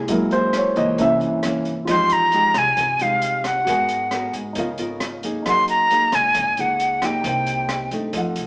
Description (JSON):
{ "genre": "bossa nova", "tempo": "134 BPM", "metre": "4/4", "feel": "straight", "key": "F minor", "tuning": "A4 = 440 Hz", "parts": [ { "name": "nylon-string guitar", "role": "accompaniment", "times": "0.0-8.5 s", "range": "C3 to Bb4", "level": "-26 LUFS", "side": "equal", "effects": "none" }, { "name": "warm grand piano", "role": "accompaniment", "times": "0.0-8.5 s", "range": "G3 to G6", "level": "-22 LUFS", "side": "equal", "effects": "none" }, { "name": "upright bass", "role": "bass", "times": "0.0-8.5 s", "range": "Ab1 to Ab2", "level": "-34 LUFS", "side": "equal", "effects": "none" }, { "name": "open jazz drum kit", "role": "drums", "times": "0.1-8.5 s", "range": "hi-hat, kick drum, rim click", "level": "-30 LUFS", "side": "equal", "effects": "none" }, { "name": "bright silver concert flute", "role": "melody", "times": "1.9-7.9 s", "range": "F5 to C6", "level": "-17 LUFS", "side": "equal", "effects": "none" } ], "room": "moderate stone room reverb, RT60 1.1 s", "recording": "band playing live in one room, small speaker sound", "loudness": "-17 LUFS", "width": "side -30 dB against mid", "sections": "0.0-1.9 A section; 1.9-8.5 B section", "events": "grand piano solo 0.0-1.9", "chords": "0.1 Gb9; 1.0 C7b9; 1.9 Fm9; 3.7 Abm9; 4.6 Db13; 5.5 Gb69; 7.2 Cm7" }